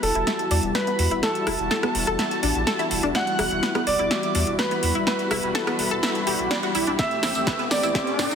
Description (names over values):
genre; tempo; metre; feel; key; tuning
progressive house; 125 BPM; 4/4; straight; E minor; A4 = 440 Hz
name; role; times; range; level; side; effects
warm grand piano; melody; 0.0-8.3 s; A4 to F#5; -28 LUFS; right 1 dB; tape echo
airy dreamy lead; second line; 0.0-8.3 s; A5 to F#6; -30 LUFS; right 1 dB; chorus, cassette tape, sidechain pumping, tape echo
lush unison pad; sustained chords; 0.2-8.3 s; E3 to G4; -36 LUFS; left 1 dB; chorus, sidechain pumping
soft supersaw; stabs; 0.0-8.3 s; G3 to G4; -29 LUFS; left 3 dB; sidechain pumping, low-pass filter
saturated sub bass; bass; 0.0-8.3 s; D1 to A2; -29 LUFS; equal; sidechain pumping
deep house drum kit; drums; 0.0-8.3 s; hi-hat, rim click, snare drum, tambourine; -26 LUFS; equal; overdrive
analog pluck; arpeggios; 0.2-8.3 s; B3 to E5; -28 LUFS; equal; analog chorus, sidechain pumping, tape echo
electronic kick drum; drums; 7.0-8.3 s; none; -30 LUFS; equal; overdrive
riser; sound effects; 7.2-8.3 s; none; -30 LUFS; left 1 dB; none
room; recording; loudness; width
moderate lush hall reverb, RT60 1.9 s, digital ambience; dense, heavily limited modern master, high-pass filter; -20 LUFS; side -7 dB against mid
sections
0.0-8.3 A section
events
build-up 0.0-8.3; drum fill 0.0-8.3; filter sweep on supersaw synth 0.0-8.3; filter sweep on analog synth pad 0.0-8.3; riser 7.2-8.3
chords
0.0 Emadd9; 7.0 Am7